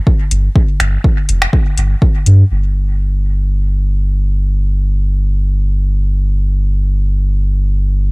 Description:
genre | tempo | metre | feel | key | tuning
dub techno | 123 BPM | 4/4 | swing 53% on 16ths | unclear | A4 = 436 Hz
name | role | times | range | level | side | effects
electronic kick drum | drums | 0.1-2.1 s | none | -12 LUFS | equal | overdrive
soft dub sub bass | bass | 0.3-8.1 s | F1 to G2 | -12 LUFS | equal | sidechain pumping
soft vintage rhythm box | drums | 0.3-2.4 s | finger snaps, hi-hat | -19 LUFS | left 1 dB | overdrive, low-pass filter on hats, low-pass filter on snare, dub echo
room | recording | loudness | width
little or no reverb | echo-heavy mix | -12 LUFS | side -28 dB against mid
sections
0.0-2.5 A section; 2.5-8.1 B section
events
none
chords
none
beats
0.07 | 0.56 1.04 1.53 2.02 | 2.51 3.00 3.48 3.97 | 4.46 4.95 5.43 5.92 | 6.41 6.90 7.38 7.87

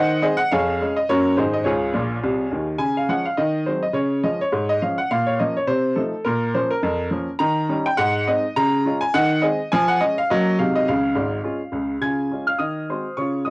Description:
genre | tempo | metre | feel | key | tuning
jazz, stride piano | 209 BPM | 4/4 | swing 58% on 8ths | Db major | A4 = 439 Hz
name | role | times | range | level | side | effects
clear upright piano | solo | 0.0-13.5 s | Ab1 to Ab6 | -18 LUFS | equal | cassette tape
room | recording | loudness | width
moderate booth ambience, RT60 0.2 s | home recording on cassette | -18 LUFS | side -25 dB against mid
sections
0.0-2.8 A section; 2.8-12.0 A section; 12.0-13.5 A section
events
upright piano fill 2.0-2.8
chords
0.0 Ab7/Eb; 0.5 Db/F; 1.1 Gb; 1.4 Ab; 1.7 Db; 3.4 Ab7/Eb; 4.0 Db; 5.1 Bbm; 5.7 F7/C; 6.3 Bbm; 7.4 Eb7; 8.0 Ab7; 8.6 Db; 9.1 Ab7/Eb; 9.7 Db/F; 10.3 Gb; 10.6 Ab7/C; 10.9 Db; 12.6 Ab7/Eb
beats
0.23 | 0.52 0.81 1.09 1.38 | 1.67 1.95 2.24 2.53 | 2.81 3.10 3.39 3.67 | 3.96 4.25 4.54 4.82 | 5.11 5.40 5.69 5.97 | 6.26 6.55 6.84 7.12 | 7.41 7.70 7.99 8.27 | 8.56 8.85 9.13 9.42 | 9.71 10.00 10.28 10.57 | 10.86 11.15 11.43 11.72 | 12.01 12.30 12.59 12.87 | 13.16 13.45

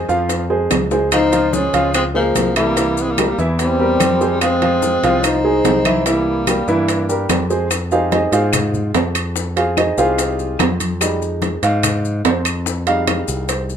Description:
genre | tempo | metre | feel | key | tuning
Afro-Cuban jazz | 146 BPM | 4/4 | straight | F minor | A4 = 440 Hz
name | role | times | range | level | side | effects
warm baby grand piano | accompaniment | 0.0-13.8 s | E3 to F5 | -19 LUFS | right 2 dB | none
modern bright picked electric bass | bass | 0.0-13.8 s | C2 to Ab2 | -22 LUFS | left 1 dB | none
bongos | percussion | 0.1-13.8 s | none | -26 LUFS | left 7 dB | none
maracas | percussion | 0.1-13.8 s | none | -28 LUFS | left 8 dB | none
congas | percussion | 0.3-13.8 s | none | -27 LUFS | left 3 dB | none
timbales | percussion | 0.3-13.7 s | none | -22 LUFS | right 7 dB | none
claves | percussion | 0.7-13.3 s | none | -27 LUFS | left 8 dB | none
trombone with bucket mute | melody | 1.1-7.3 s | Ab3 to Eb4 | -19 LUFS | equal | none
clear tenor saxophone | second line | 1.1-7.3 s | F3 to C4 | -23 LUFS | left 3 dB | none
room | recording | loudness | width
moderate club reverb, RT60 0.7 s | minimal, uncompressed stereo recording | -14 LUFS | side -8 dB against mid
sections
0.0-7.7 A section; 7.7-13.8 B section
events
drum fill 0.9; grand piano solo 7.7-13.8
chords
0.0 Fm; 1.1 Dbmaj7; 2.8 C7; 4.4 Fm7; 6.1 C7; 7.7 Fm7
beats
0.30 0.71 | 1.12 1.53 1.95 2.36 | 2.77 3.18 3.59 4.00 | 4.42 4.83 5.24 5.65 | 6.06 6.47 6.88 7.30 | 7.71 8.12 8.54 8.95 | 9.36 9.77 10.19 10.60 | 11.01 11.43 11.84 12.25 | 12.67 13.08 13.49

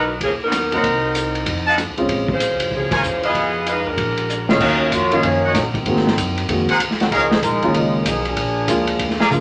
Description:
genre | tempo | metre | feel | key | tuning
jazz, big band swing | 191 BPM | 4/4 | swing 63% on 8ths | Bb minor, Eb minor from 4.6 s | A4 = 436 Hz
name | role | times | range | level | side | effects
mellow saxophone section | melody | 0.0-4.5 s | F3 to Eb5 | -23 LUFS | equal | none
warm trumpet section | stabs | 0.0-9.3 s | Gb4 to A#5 | -22 LUFS | equal | none
upright bass | bass | 0.0-9.4 s | Bb1 to Bb2 | -30 LUFS | equal | none
vintage drum kit | drums | 0.2-9.4 s | crash cymbal, hi-hat, kick drum, ride cymbal, rim click, snare drum, toms | -25 LUFS | equal | none
warm grand piano | accompaniment | 0.7-2.4, 4.5-9.4 s | Eb2 to Gb4 | -23 LUFS | equal | none
warm trombone section | second line | 4.5-9.2 s | D3 to Bb4 | -24 LUFS | equal | none
room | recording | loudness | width
wet club reverb, RT60 0.6 s | none | -19 LUFS | mono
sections
0.0-4.6 A section; 4.6-9.4 B section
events
band accent 2.9; drum fill 4.3-4.6; trombone section solo 4.6-9.4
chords
0.0 Bmaj7; 0.8 Cm7b5; 1.5 F7b9; 2.1 Bbm9; 3.3 Fm7b5; 4.0 Bb7alt; 4.6 Ebm9; 5.9 Ab9; 7.1 Db69; 8.4 Bb7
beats
0.21 0.52 | 0.84 1.15 1.46 1.78 | 2.09 2.41 2.72 3.03 | 3.35 3.66 3.98 4.29 | 4.60 4.92 5.23 5.55 | 5.86 6.17 6.49 6.80 | 7.12 7.43 7.74 8.06 | 8.37 8.69 9.00 9.31

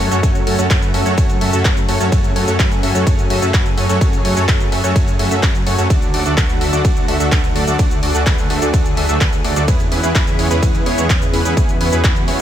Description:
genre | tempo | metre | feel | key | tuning
EDM, festival progressive house | 127 BPM | 4/4 | straight | F# minor | A4 = 440 Hz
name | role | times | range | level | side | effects
lush unison pad | sustained chords | 0.0-12.4 s | C#3 to G#4 | -24 LUFS | equal | chorus, sidechain pumping
supersaw stab | riff | 0.0-12.4 s | A3 to E5 | -19 LUFS | right 1 dB | cassette tape, sidechain pumping, ping-pong delay
detuned saw bass | bass | 0.0-12.4 s | D2 to F#2 | -20 LUFS | equal | tube saturation, sidechain pumping
big-room dance drum kit | drums | 0.0-12.4 s | cabasa, handclaps, hi-hat, ride cymbal | -23 LUFS | equal | none
electronic kick drum | drums | 0.2-12.1 s | none | -16 LUFS | equal | overdrive
room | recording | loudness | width
little or no reverb | none | -13 LUFS | side -10 dB against mid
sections
0.0-12.4 A section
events
none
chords
0.0 F#m; 5.9 D; 9.7 E6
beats
| 0.23 0.70 1.18 1.65 | 2.12 2.60 3.07 3.54 | 4.01 4.48 4.96 5.43 | 5.90 6.37 6.85 7.32 | 7.79 8.26 8.74 9.21 | 9.68 10.15 10.63 11.10 | 11.57 12.04

